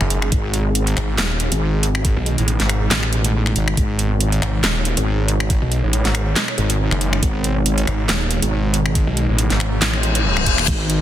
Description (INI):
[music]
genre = heavy wobble dubstep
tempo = 139 BPM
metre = 4/4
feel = swing 55% on 16ths, half-time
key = G# phrygian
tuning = A4 = 440 Hz
[part]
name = supersaw pad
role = sustained chords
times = 0.0-11.0 s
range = B2 to C#5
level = -25 LUFS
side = right 1 dB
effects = phaser, sidechain pumping, low-pass filter
[part]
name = snarling distorted saw bass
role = bass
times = 0.0-10.7 s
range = D#1 to B1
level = -19 LUFS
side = equal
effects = distortion, overdrive
[part]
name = dubstep drum kit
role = drums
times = 0.0-11.0 s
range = crash cymbal, finger snaps, handclaps, hi-hat, ride cymbal, snare drum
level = -22 LUFS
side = equal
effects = none
[part]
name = wobble bass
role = bass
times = 0.3-11.0 s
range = G#1 to A1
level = -19 LUFS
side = equal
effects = chorus, overdrive
[part]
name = electronic kick drum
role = drums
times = 0.3-10.8 s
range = none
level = -20 LUFS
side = equal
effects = none
[part]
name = reverse cymbal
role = sound effects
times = 10.0-10.7 s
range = none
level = -20 LUFS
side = left 6 dB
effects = none
[sound]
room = little or no reverb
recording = dense, heavily limited modern master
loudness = -16 LUFS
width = side -12 dB against mid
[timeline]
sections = 0.0-11.0 A section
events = reverse cymbal 10.0-10.7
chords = 0.0 G#m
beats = | 0.32 0.75 1.18 1.61 | 2.05 2.48 2.91 3.34 | 3.77 4.21 4.64 5.07 | 5.50 5.93 6.36 6.79 | 7.23 7.66 8.09 8.52 | 8.95 9.38 9.82 10.25 | 10.68